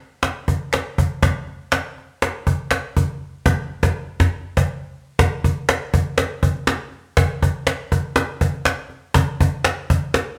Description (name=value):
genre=soul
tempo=121 BPM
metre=4/4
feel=straight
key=none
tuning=none
part: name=cajon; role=drums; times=0.2-10.3 s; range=none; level=-21 LUFS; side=equal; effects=none
part: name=finger snap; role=percussion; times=0.7-9.8 s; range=none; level=-27 LUFS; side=equal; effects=none
room=wet studio reverb, RT60 0.9 s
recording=band playing live in one room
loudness=-21 LUFS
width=mono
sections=0.0-5.2 A section; 5.2-10.4 B section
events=band accent 3.2-5.2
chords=none